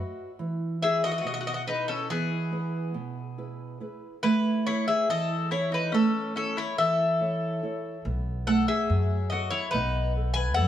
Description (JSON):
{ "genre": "greek folk, Greek bouzouki band", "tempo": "141 BPM (eighths)", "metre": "9/8", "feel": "straight", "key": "E major", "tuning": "A4 = 441 Hz", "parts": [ { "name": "Greek bouzouki", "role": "melody", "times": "0.0-10.7 s", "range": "G#4 to G#5", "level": "-28 LUFS", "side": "left 2 dB", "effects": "none" }, { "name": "mandolin", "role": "second line", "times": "0.0-10.7 s", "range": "B3 to B4", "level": "-33 LUFS", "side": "left 6 dB", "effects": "none" }, { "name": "nylon-string guitar", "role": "accompaniment", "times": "0.0-10.7 s", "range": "B2 to F#5", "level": "-29 LUFS", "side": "right 2 dB", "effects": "none" }, { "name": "upright bass", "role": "bass", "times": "8.1-10.7 s", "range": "B1 to F#2", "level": "-27 LUFS", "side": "equal", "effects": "none" } ], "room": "light reverb", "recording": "small room ambience", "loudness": "-25 LUFS", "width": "side -11 dB against mid", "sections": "0.4-10.7 A section", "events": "none", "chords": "0.4 E; 4.2 A; 8.0 B7" }